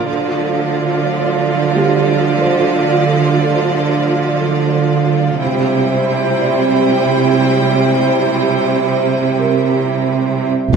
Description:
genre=cinematic, hybrid orchestral and electronic film score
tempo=90 BPM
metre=4/4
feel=straight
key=unclear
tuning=A4 = 443 Hz
part: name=rich symphonic violin section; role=second line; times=0.0-10.5 s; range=A4 to G5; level=-21 LUFS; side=left 3 dB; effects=none
part: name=rich symphonic viola section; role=accompaniment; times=0.0-10.8 s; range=F3 to F4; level=-20 LUFS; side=right 2 dB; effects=none
part: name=dark analog pad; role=sustained chords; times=0.0-10.8 s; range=G3 to F5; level=-20 LUFS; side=right 2 dB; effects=chorus
part: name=clear symphonic cello section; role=bass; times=0.0-10.8 s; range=C3 to D3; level=-16 LUFS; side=right 6 dB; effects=none
part: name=felt-muted upright piano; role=texture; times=0.0-10.8 s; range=G3 to D5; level=-25 LUFS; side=right 3 dB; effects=none
part: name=rich symphonic double bass section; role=bass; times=10.7-10.8 s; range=F1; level=-16 LUFS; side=right 6 dB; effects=none
room=moderate scoring stage reverb, RT60 1.7 s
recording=none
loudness=-12 LUFS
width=side -6 dB against mid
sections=0.0-10.7 A section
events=none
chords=0.1 Dm; 5.4 C

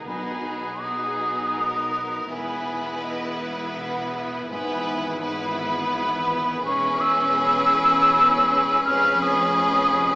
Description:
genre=classical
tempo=82 BPM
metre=3/4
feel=rubato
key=unclear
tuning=A4 = 438 Hz
part: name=mellow hollow silver concert flute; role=second line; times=0.0-10.2 s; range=D#5 to E#6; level=-21 LUFS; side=equal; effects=none
part: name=rich chamber viola section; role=accompaniment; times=0.0-10.2 s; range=B3 to C#4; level=-30 LUFS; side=equal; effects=none
part: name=concert harp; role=arpeggios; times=0.0-10.2 s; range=E2 to G#4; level=-36 LUFS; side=equal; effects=none
part: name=rich studio double bass section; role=bass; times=0.0-10.2 s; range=E1 to B1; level=-37 LUFS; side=right 1 dB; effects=none
part: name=clear chamber violin section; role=melody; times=0.1-10.2 s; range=G#4 to B4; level=-31 LUFS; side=equal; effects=none
part: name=rich chamber violin section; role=second line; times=0.1-10.2 s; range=D#4 to G#4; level=-30 LUFS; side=left 1 dB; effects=none
part: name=clear studio cello section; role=bass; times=0.1-10.2 s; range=E2 to B2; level=-35 LUFS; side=equal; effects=none
part: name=timpani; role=percussion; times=0.1-1.1 s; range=B2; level=-40 LUFS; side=equal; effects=none
room=wet recital hall reverb, RT60 1.3 s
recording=recorded in a church or concert hall, small speaker sound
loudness=-20 LUFS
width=side -22 dB against mid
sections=0.0-10.2 A section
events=none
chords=0.1 G#m/B; 2.3 E; 4.5 E/G#; 6.6 C#m7/E; 8.9 C#7/E#

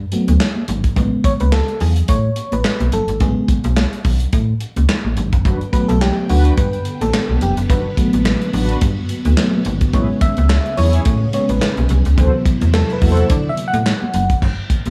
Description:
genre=early-eighties boogie funk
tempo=107 BPM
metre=4/4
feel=swing 56% on 16ths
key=G major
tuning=A4 = 440 Hz
part: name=slap-like FM bass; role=bass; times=0.0-14.9 s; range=F1 to D3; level=-19 LUFS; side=equal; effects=none
part: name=FM electric piano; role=accompaniment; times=0.1-14.4 s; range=C3 to F#5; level=-23 LUFS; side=equal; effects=chorus
part: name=modern studio drum kit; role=drums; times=0.1-14.9 s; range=crash cymbal, handclaps, hi-hat, kick drum, snare drum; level=-21 LUFS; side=equal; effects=gated reverb
part: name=congas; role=percussion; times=0.1-14.9 s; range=none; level=-28 LUFS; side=equal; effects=none
part: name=mellow synth brass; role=second line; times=5.5-13.3 s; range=D4 to C#5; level=-26 LUFS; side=equal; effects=chorus, slapback echo
part: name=string machine, full ensemble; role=sustained chords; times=5.5-14.4 s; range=C3 to G5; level=-28 LUFS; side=equal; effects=ensemble chorus
room=light reverb, small room ambience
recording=none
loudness=-16 LUFS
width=mono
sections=0.0-14.4 A section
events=FM electric piano solo 0.0-14.4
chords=0.0 Gmaj9 (rootless); 1.0 Amaj9; 5.4 Gmaj9; 9.9 Amaj9; 12.2 D13

